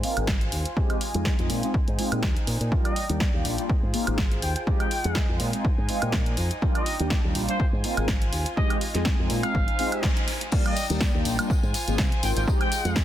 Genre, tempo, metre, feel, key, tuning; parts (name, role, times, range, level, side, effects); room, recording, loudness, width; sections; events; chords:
filtered disco house; 123 BPM; 4/4; swing 55% on 16ths; Eb major; A4 = 439 Hz
mellow synth brass; accompaniment; 0.0-13.0 s; G3 to Ab4; -30 LUFS; equal; chorus, phaser, sidechain pumping, low-pass filter
warm studio violin section; sustained chords; 0.0-13.0 s; Eb4 to Ab5; -36 LUFS; equal; sidechain pumping, low-pass filter
punchy analog drum machine; drums; 0.0-13.0 s; crash cymbal, hi-hat, snare drum, woodblock; -30 LUFS; equal; sidechain pumping on hats, sidechain pumping on perc, sidechain pumping on cymbals
tambourine; percussion; 0.0-13.0 s; -41 LUFS; left 5 dB; sidechain pumping on perc, low-pass filter on perc
fingered electric bass with an envelope filter; bass; 0.2-12.9 s; Ab1 to C3; -28 LUFS; equal; sidechain pumping, low-pass filter
electronic kick drum; drums; 0.3-13.0 s; -25 LUFS; equal
bright trumpet section; melody; 2.8-13.0 s; C5 to G5; -33 LUFS; left 1 dB; sidechain pumping, low-pass filter, tape echo
little or no reverb; dense, heavily limited modern master; -22 LUFS; side -12 dB against mid
0.0-10.5 A section; 10.5-13.0 B section
filter sweep 0.0-10.5; band accent 10.0; drop 10.5-13.0
0.0 Ab6; 0.8 Fm7; 1.5 Bb9sus4; 2.7 Ebmaj7; 3.7 Ab6; 4.7 Fm7; 5.4 Bb9sus4; 6.6 Ebmaj7; 7.6 Ab6; 8.6 Fm7; 9.3 Bb9sus4 (rootless); 10.5 Ebmaj7; 11.5 Ab6; 12.5 Fm7